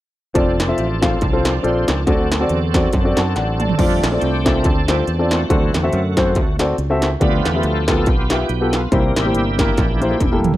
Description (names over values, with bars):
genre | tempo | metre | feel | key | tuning
uptempo gospel | 140 BPM | 4/4 | swing 56% on 8ths | F major | A4 = 439 Hz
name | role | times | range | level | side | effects
warm grand piano | accompaniment | 0.3-10.5 s | C3 to A5 | -20 LUFS | left 2 dB | none
bright tonewheel organ | sustained chords | 0.4-10.4 s | D3 to D5 | -24 LUFS | right 2 dB | fast rotary speaker, chorus vibrato
fingered electric bass | bass | 0.4-10.6 s | E1 to F#2 | -21 LUFS | equal | none
industrial drum kit | drums | 0.4-10.6 s | crash cymbal, hi-hat, kick drum, snare drum, toms | -19 LUFS | equal | distortion, overdrive
room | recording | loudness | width
digital ambience | dry, close 1970s-style studio recording | -15 LUFS | side -15 dB against mid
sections
0.4-3.8 A section; 3.8-10.6 B section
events
grand piano fill 3.1-3.8; drum fill 3.4-3.8, 9.8-10.6; tonewheel organ solo 3.8-10.6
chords
0.4 F6; 2.1 D7; 3.8 F6; 5.5 D7; 7.2 G7/D; 8.9 C7